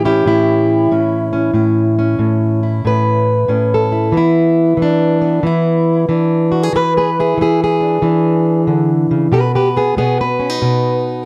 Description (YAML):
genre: acoustic country blues, solo or duo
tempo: 93 BPM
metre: 4/4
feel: swing 66% on 8ths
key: E mixolydian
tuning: A4 = 440 Hz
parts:
  - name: fingerpicked plugged-in steel-string acoustic guitar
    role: solo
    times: 0.0-11.3 s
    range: A2 to B4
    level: -14 LUFS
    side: equal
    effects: none
room: small room ambience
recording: dry, close 1970s-style studio recording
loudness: -14 LUFS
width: mono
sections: 0.0-11.3 A section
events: none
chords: 0.0 A7; 4.1 E7; 9.3 B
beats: 0.26 0.91 | 1.56 2.20 2.85 3.50 | 4.14 4.79 5.44 6.08 | 6.73 7.38 8.02 8.67 | 9.32 9.96 10.61